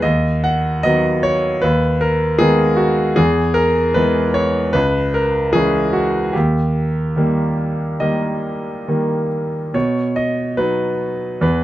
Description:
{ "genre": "classical, lyrical solo piano", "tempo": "68-78 BPM", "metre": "4/4", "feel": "rubato", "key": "unclear", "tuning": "A4 = 440 Hz", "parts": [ { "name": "bright concert grand piano", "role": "solo", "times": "0.0-11.6 s", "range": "C#2 to F#5", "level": "-15 LUFS", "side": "equal", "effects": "none" } ], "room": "light reverb", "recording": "close, detailed microphones", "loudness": "-15 LUFS", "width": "side -14 dB against mid", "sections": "0.0-11.6 A section", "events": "none", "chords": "0.0 B/D#; 1.6 G#m/D#; 3.2 E; 4.8 C#m; 6.4 D#; 9.8 B" }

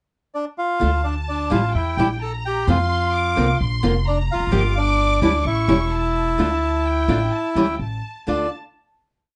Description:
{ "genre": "tango", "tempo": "129 BPM", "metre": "4/4", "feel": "rubato", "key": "D minor", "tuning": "A4 = 440 Hz", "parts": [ { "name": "bandoneon", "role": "melody", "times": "0.3-8.5 s", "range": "D4 to A5", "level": "-24 LUFS", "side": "equal", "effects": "none" }, { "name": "warm studio violin section", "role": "second line", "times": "0.8-8.5 s", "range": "G5 to D6", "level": "-32 LUFS", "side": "equal", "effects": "none" }, { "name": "nylon-string guitar", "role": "accompaniment", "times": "0.8-8.5 s", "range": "C3 to G4", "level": "-23 LUFS", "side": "equal", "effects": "none" }, { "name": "upright bass", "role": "bass", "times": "0.8-8.5 s", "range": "E1 to F2", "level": "-25 LUFS", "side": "equal", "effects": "none" } ], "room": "light reverb", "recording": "dark, warm production, nothing above 10.7 kHz", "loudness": "-21 LUFS", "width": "mono", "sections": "0.0-0.8 pickup bar; 0.8-8.3 A section; 8.3-9.4 final chord", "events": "none", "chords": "0.0 Dm; 1.7 Edim; 2.7 F5; 3.6 Bbadd9; 4.5 G7(no3); 5.5 A; 6.4 Dm; 7.8 N.C.; 8.3 Dm" }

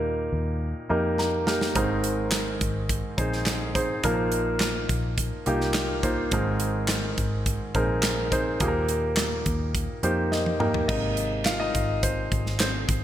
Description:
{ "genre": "piano-driven pop", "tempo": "105 BPM", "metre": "4/4", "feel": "straight", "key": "unclear", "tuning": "A4 = 440 Hz", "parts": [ { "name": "warm grand piano", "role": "accompaniment", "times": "0.0-13.0 s", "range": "Ab2 to Bb5", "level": "-26 LUFS", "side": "equal", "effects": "none" }, { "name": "vintage muted fingered electric bass", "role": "bass", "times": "0.0-13.0 s", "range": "Ab1 to F2", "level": "-30 LUFS", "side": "equal", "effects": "none" }, { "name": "modern studio drum kit", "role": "drums", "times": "1.2-13.0 s", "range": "crash cymbal, handclaps, hi-hat, kick drum, snare drum, toms", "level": "-28 LUFS", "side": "equal", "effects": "gated reverb" } ], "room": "moderate plate reverb, RT60 3.0 s", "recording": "bright 1980s-style digital production", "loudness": "-23 LUFS", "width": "side -11 dB against mid", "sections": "0.0-10.9 A section; 10.9-13.0 B section", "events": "grand piano fill 0.6-1.8, 10.0-10.9; drum fill 1.2-1.8, 10.3-10.9; grand piano solo 10.9-13.0", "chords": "0.0 Eb; 1.8 Abadd9; 4.0 Bbsus4; 6.3 Abadd9; 8.6 Eb; 10.9 Abadd9" }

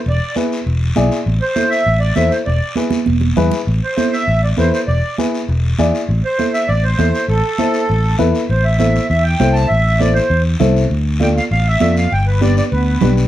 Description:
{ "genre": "latin, cumbia", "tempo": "199 BPM", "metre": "4/4", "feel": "straight", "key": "A harmonic minor, A minor from 8.5 s", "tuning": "A4 = 441 Hz", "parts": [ { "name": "accordion", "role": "melody", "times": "0.1-13.1 s", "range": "A4 to A5", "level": "-18 LUFS", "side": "right 1 dB", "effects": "light tremolo tuning" }, { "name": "fingered electric bass", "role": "bass", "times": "0.1-13.3 s", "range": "E1 to F2", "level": "-15 LUFS", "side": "equal", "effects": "none" }, { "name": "congas", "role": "percussion", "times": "0.1-13.2 s", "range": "none", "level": "-20 LUFS", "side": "right 6 dB", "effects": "none" }, { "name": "guiro", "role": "percussion", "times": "0.1-13.3 s", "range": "none", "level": "-30 LUFS", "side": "left 3 dB", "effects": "none" }, { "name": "dark upright piano", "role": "accompaniment", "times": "0.4-13.2 s", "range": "D4 to D5", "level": "-20 LUFS", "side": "left 5 dB", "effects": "none" }, { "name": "mellow clarinet", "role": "second line", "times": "12.7-13.1 s", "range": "B3", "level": "-21 LUFS", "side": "right 2 dB", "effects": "none" } ], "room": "light reverb", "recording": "dark, warm production", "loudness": "-13 LUFS", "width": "side -13 dB against mid", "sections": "0.0-8.5 A section; 8.5-13.3 B section", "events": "drum fill 2.9-3.7", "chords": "0.1 E7; 1.3 Am; 2.5 E7; 3.7 Am; 4.9 E7; 6.1 Am; 10.9 Dm; 12.1 G" }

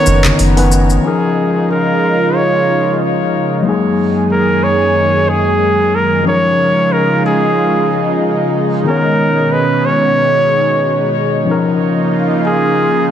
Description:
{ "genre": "sunset chillout", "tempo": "92 BPM", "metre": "4/4", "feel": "swing 56% on 16ths", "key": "Db mixolydian", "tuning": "A4 = 440 Hz", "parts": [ { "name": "warm flugelhorn", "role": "melody", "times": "0.0-13.1 s", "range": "Ab4 to Db5", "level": "-15 LUFS", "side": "equal", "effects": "ping-pong delay" }, { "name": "overdriven tine electric piano", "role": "accompaniment", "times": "0.0-13.1 s", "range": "Eb3 to Db5", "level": "-16 LUFS", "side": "moving between left 4 dB and right 3 dB", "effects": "auto-pan, ping-pong delay" }, { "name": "lush unison pad", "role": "sustained chords", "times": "0.0-13.1 s", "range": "Gb2 to Bb5", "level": "-16 LUFS", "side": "equal", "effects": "chorus, phaser" }, { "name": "round analog bass", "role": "bass", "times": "0.1-1.0 s", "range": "Gb1", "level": "-12 LUFS", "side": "equal", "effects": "none" }, { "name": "deep house drum kit", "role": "drums", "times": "0.1-1.0 s", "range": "handclaps, hi-hat, shaker", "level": "-19 LUFS", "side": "equal", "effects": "overdrive, low-pass filter on hats, studio reverb, low-pass filter on perc, low-pass filter on snare" } ], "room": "wet recital hall reverb, RT60 1.4 s", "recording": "heavily compressed radio sound", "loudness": "-11 LUFS", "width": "side -9 dB against mid", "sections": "0.0-1.0 A section; 1.0-13.1 B section", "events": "none", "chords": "0.0 Cbmaj9; 1.0 Db69; 3.7 Gb69; 6.3 Db69; 8.9 Cbmaj9; 11.5 Db69" }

